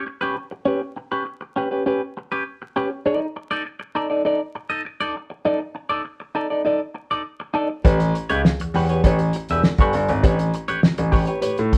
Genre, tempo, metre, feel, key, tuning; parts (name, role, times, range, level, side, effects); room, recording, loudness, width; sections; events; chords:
funk; 100 BPM; 4/4; straight; A4 = 440 Hz
clean electric guitar; accompaniment; 0.0-11.8 s; C#4 to E5; -25 LUFS; equal; wah
warm concert grand piano; bass; 7.8-11.7 s; E1 to A2; -23 LUFS; equal
cloth-damped thuddy drum kit; drums; 7.8-11.8 s; hi-hat, kick drum, snare drum; -20 LUFS; equal
moderate studio reverb, RT60 0.6 s; band playing live in one room, vinyl crackle; -22 LUFS; mono
0.0-11.8 A section
0.0 G; 3.1 D5; 7.8 A9